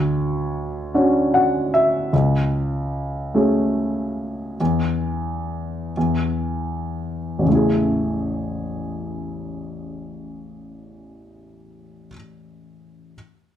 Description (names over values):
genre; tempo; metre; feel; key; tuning
folk; 38-50 BPM (dotted quarters); 6/8; straight; A major; A4 = 440 Hz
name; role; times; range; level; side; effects
dark grand piano; accompaniment; 0.0-13.2 s; A1 to F#5; -20 LUFS; equal; none
room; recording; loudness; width
moderate large studio reverb, RT60 0.8 s; none; -19 LUFS; side -10 dB against mid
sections
0.0-7.5 A section; 7.5-10.6 B section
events
slowing down 2.1-7.5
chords
0.0 Dmaj7; 2.1 Amaj7/C#; 4.6 N.C.; 7.5 Amaj7